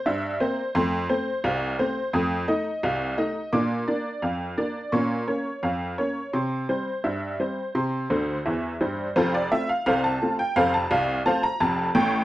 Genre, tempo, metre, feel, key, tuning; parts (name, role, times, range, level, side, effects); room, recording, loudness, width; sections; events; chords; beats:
ragtime piano; 86 BPM; 2/4; straight; F major; A4 = 443 Hz
honky-tonk upright piano; solo; 0.0-12.2 s; F1 to Eb6; -22 LUFS; equal
studio reverb; dry, close 1970s-style studio recording; -23 LUFS; side -15 dB against mid
0.0-9.2 A section; 9.2-12.2 B section
honky-tonk piano fill 8.1-9.2
0.0 C7; 0.8 F; 2.1 F7; 3.5 Bb; 4.9 Bbm; 6.3 C; 9.2 F
0.06 | 0.75 1.45 | 2.14 2.84 | 3.53 4.23 | 4.92 5.62 | 6.33 7.04 | 7.75 8.45 | 9.15 9.85 | 10.55 11.25 | 11.95